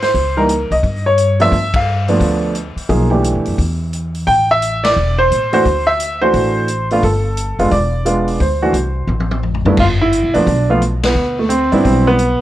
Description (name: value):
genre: jazz piano trio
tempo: 174 BPM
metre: 4/4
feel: swing 64% on 8ths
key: G mixolydian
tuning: A4 = 440 Hz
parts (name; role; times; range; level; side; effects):
- warm baby grand piano; melody; 0.0-12.4 s; G2 to G5; -14 LUFS; right 1 dB; plate reverb
- upright bass; bass; 0.0-12.4 s; E1 to A2; -18 LUFS; equal; none
- swinging big-band drum kit; drums; 0.0-12.3 s; crash cymbal, hi-hat, kick drum, ride cymbal, snare drum, toms; -23 LUFS; left 2 dB; none
room: light reverb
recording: worn, warbling old tape, cassette tape, warbly pitch drift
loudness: -12 LUFS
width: side -13 dB against mid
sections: 0.0-9.8 A section; 9.8-12.4 A section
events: band accent 1.7, 4.8, 11.0; drum fill 9.1-9.8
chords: 0.1 C#dim7(no3); 1.5 G9; 2.9 Bm7b5; 3.6 N.C.; 4.3 Am; 5.7 D9; 7.0 G7sus2; 7.7 E7b9; 8.4 D7(no3); 9.8 G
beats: | 0.15 0.49 0.84 1.18 | 1.52 1.87 2.21 2.56 | 2.90 3.24 3.59 3.93 | 4.28 4.62 4.96 5.31 | 5.65 6.00 6.34 6.68 | 7.03 7.37 7.72 8.06 | 8.40 8.75 9.09 9.44 | 9.78 10.12 10.47 10.81 | 11.16 11.50 11.85 12.19